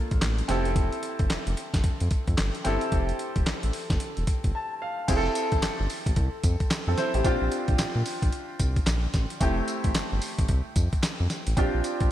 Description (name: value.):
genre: R&B, new jack swing.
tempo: 111 BPM.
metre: 4/4.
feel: swing 62% on 16ths.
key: unclear.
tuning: A4 = 440 Hz.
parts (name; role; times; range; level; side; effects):
clear baby grand piano; accompaniment; 0.0-12.1 s; A3 to A5; -30 LUFS; equal; wide subtle chorus.
round analog bass; bass; 0.1-12.1 s; E1 to Bb2; -27 LUFS; equal; none.
dusty soul sampler-style drum kit; drums; 0.1-12.1 s; crash cymbal, handclaps, hi-hat, kick drum, snare drum, tambourine; -27 LUFS; equal; none.
room: light reverb.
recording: none.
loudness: -24 LUFS.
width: side -12 dB against mid.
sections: 0.0-5.1 A section; 5.1-12.1 B section.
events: grand piano fill 4.3-5.1; break 4.5-5.1.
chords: 0.5 Fmaj9; 7.2 Bb6; 9.4 Fmaj9; 11.6 Bb6.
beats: 0.22 | 0.76 1.30 1.84 2.38 | 2.92 3.46 4.00 4.54 | 5.08 5.62 6.16 6.71 | 7.25 7.79 8.33 8.87 | 9.41 9.95 10.49 11.03 | 11.57 12.11.